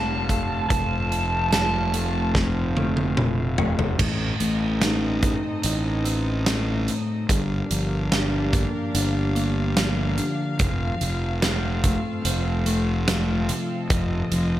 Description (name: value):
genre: post-rock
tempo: 73 BPM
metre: 4/4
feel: straight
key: unclear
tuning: A4 = 436 Hz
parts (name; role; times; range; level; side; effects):
- raw garage guitar; melody; 0.0-2.3 s; A5; -26 LUFS; right 1 dB; overdrive, phaser, analog delay
- warm studio string section; sustained chords; 0.0-14.6 s; C4 to F5; -33 LUFS; equal; none
- mellow electric guitar; arpeggios; 0.0-14.6 s; F2 to Eb4; -28 LUFS; left 1 dB; analog delay
- fuzz fingered electric bass; bass; 0.0-14.6 s; F1 to A1; -25 LUFS; equal; overdrive
- big rock drum kit; drums; 0.3-14.5 s; crash cymbal, hi-hat, kick drum, snare drum, toms; -25 LUFS; equal; none
room: light reverb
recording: none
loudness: -21 LUFS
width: side -13 dB against mid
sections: 0.0-4.0 A section; 4.0-14.6 B section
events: drum fill 2.3-4.0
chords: 0.0 F; 4.0 Adim; 7.3 Gm7; 10.6 F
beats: | 0.70 1.52 2.34 3.17 | 3.99 4.82 5.64 6.47 | 7.29 8.12 8.95 9.77 | 10.60 11.42 12.25 13.07 | 13.90